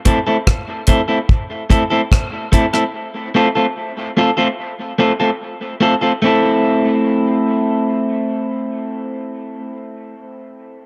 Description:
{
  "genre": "dub reggae",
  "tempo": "73 BPM",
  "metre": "4/4",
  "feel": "straight",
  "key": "A minor",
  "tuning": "A4 = 441 Hz",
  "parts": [
    { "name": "electric guitar at the edge of break-up", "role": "accompaniment", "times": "0.1-9.8 s", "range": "A3 to A4", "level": "-18 LUFS", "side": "equal", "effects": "dub echo" },
    { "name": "deep reggae drum kit", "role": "drums", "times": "0.1-2.9 s", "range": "hi-hat, kick drum, rim click", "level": "-16 LUFS", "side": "equal", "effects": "none" }
  ],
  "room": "moderate spring reverb, RT60 2.4 s",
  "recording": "echo-heavy mix",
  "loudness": "-17 LUFS",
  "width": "mono",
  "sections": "0.0-6.2 A section; 6.2-9.5 B section",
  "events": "none",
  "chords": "0.0 Am; 2.9 F; 6.2 Am"
}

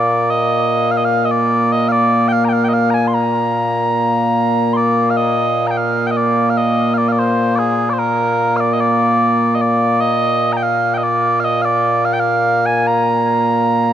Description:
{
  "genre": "scottish traditional",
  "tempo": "74 BPM",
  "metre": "3/4",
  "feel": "straight",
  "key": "Bb major",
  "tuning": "A4 = 441 Hz",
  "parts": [
    { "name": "mellow small bagpipes", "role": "solo", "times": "0.0-13.9 s", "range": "Bb2 to C6", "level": "-13 LUFS", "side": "equal", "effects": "none" }
  ],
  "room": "moderate huge ambient reverb, RT60 4.2 s",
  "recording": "dark, warm production",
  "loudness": "-13 LUFS",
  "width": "side -10 dB against mid",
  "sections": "0.0-5.6 A section; 5.6-13.9 A section",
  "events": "none",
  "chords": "none"
}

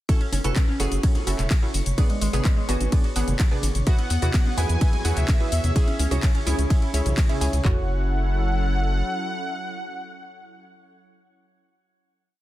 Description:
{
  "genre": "progressive house",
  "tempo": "127 BPM",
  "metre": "4/4",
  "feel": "straight",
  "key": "F# minor",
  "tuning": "A4 = 440 Hz",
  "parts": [
    { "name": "glassy wavetable pluck", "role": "arpeggios", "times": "0.1-10.6 s", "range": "G#3 to A4", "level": "-33 LUFS", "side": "equal", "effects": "chorus, phaser, sidechain pumping, tape echo" },
    { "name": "wide unison pluck", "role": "stabs", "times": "0.1-10.6 s", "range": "B3 to G#5", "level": "-31 LUFS", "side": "right 2 dB", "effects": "sidechain pumping, tape echo" },
    { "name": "house drum kit", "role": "drums", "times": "0.1-7.8 s", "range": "handclaps, kick drum, toms", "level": "-20 LUFS", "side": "equal", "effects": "none" },
    { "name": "house drum kit", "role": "drums", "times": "0.1-7.6 s", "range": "handclaps, hi-hat, ride cymbal, shaker", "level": "-32 LUFS", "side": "left 1 dB", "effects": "sidechain pumping on hats, sidechain pumping on cymbals, sidechain pumping on perc" },
    { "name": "bongos and congas", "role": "percussion", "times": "0.1-7.6 s", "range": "none", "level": "-34 LUFS", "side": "right 2 dB", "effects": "none" },
    { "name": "drifting glass-harmonics texture", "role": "texture", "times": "0.4-7.7 s", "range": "C#5 to C#6", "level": "-41 LUFS", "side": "equal", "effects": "chorus, built-in reverb, sidechain pumping" },
    { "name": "round analog bass", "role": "bass", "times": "0.3-9.0 s", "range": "E1 to E2", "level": "-23 LUFS", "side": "equal", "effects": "sidechain pumping" },
    { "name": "soft supersaw", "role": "melody", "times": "3.9-10.6 s", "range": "E5 to G#5", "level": "-32 LUFS", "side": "equal", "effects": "sidechain pumping, tape echo" },
    { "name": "lush unison pad", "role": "sustained chords", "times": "4.2-10.6 s", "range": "C#3 to A4", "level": "-33 LUFS", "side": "equal", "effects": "chorus, sidechain pumping" }
  ],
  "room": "digital ambience",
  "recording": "dense, heavily limited modern master",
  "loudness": "-20 LUFS",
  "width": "side -15 dB against mid",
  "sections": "0.1-7.6 drop; 7.6-11.4 final chord",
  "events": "drop 0.1-7.6",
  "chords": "0.1 F#m7; 2.0 G#dim; 3.9 Eadd9; 5.8 C#m; 7.6 F#m7"
}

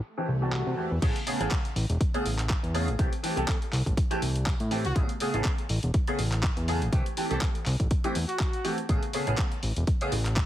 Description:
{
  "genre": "filtered disco house",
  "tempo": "122 BPM",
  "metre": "4/4",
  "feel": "swing 55% on 16ths",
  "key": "unclear",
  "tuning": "A4 = 441 Hz",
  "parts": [
    { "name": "swell", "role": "sound effects", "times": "0.1-1.0 s", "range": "none", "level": "-42 LUFS", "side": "right 1 dB", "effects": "none" },
    { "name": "bright concert grand piano", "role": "accompaniment", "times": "0.2-10.1 s", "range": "C#3 to G#4", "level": "-31 LUFS", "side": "equal", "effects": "phaser, sidechain pumping, low-pass filter" },
    { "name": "fat analog bass", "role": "bass", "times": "0.3-10.4 s", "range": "E1 to C3", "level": "-28 LUFS", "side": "equal", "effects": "tube saturation, sidechain pumping, low-pass filter" },
    { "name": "clear horn section", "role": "melody", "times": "0.4-8.8 s", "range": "F#4 to A4", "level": "-36 LUFS", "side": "equal", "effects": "sidechain pumping, low-pass filter, digital delay" },
    { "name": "dusty soul sampler-style drum kit", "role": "drums", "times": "0.5-10.5 s", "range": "crash cymbal, handclaps, hi-hat", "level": "-35 LUFS", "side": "equal", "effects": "low-pass filter on snare, studio reverb, sidechain pumping on hats, low-pass filter on hats, sidechain pumping on cymbals, low-pass filter on cymbals" },
    { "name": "electronic kick drum", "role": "drums", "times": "1.0-10.5 s", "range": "none", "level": "-27 LUFS", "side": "equal", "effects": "studio reverb" }
  ],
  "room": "little or no reverb",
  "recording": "heavily compressed radio sound",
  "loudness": "-25 LUFS",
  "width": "side -13 dB against mid",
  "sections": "0.0-1.0 A section; 1.0-10.5 B section",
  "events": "swell 0.1-1.0; drop 1.0-10.5",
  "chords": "0.0 C6; 1.0 Amaj9; 3.0 C6; 5.0 Amaj9; 6.9 C6; 8.9 Amaj9"
}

